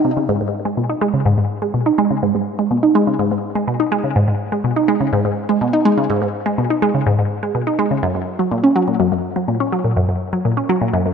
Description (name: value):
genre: ambient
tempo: 124 BPM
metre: 4/4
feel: straight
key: G# minor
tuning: A4 = 440 Hz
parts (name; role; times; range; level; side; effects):
- resonant blip pluck; solo; 0.0-11.1 s; F#2 to D#4; -15 LUFS; equal; phaser, ping-pong delay
room: moderate plate reverb, RT60 2.9 s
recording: none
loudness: -15 LUFS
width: side -6 dB against mid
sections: 0.3-11.1 A section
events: none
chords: none